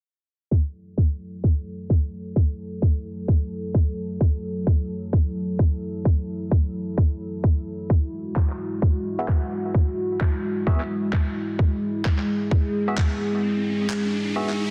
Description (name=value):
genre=bass house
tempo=130 BPM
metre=4/4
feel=swing 58% on 16ths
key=F# minor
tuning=A4 = 436 Hz
part: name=dark analog pad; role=sustained chords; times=1.2-14.7 s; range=F#3 to A4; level=-30 LUFS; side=equal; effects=chorus, sidechain pumping
part: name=electronic kick drum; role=drums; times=0.5-13.1 s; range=none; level=-21 LUFS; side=equal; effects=none
part: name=electronic handclaps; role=drums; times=8.4-14.6 s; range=none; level=-38 LUFS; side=equal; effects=soft clipping on snare
part: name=percussive organ stab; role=stabs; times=9.2-14.5 s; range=B3 to E5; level=-34 LUFS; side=equal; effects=chorus, cassette tape, sidechain pumping, delay
part: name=riser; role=sound effects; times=12.5-14.7 s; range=none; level=-36 LUFS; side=equal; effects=none
room=light reverb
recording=dense, heavily limited modern master, low-pass filter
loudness=-24 LUFS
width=mono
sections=0.5-14.7 A section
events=filter sweep on analog synth pad 0.5-14.7; filter sweep 0.5-14.7; riser 12.5-14.7; kick drops out 13.4-14.7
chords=0.5 F#m7; 7.9 Eadd9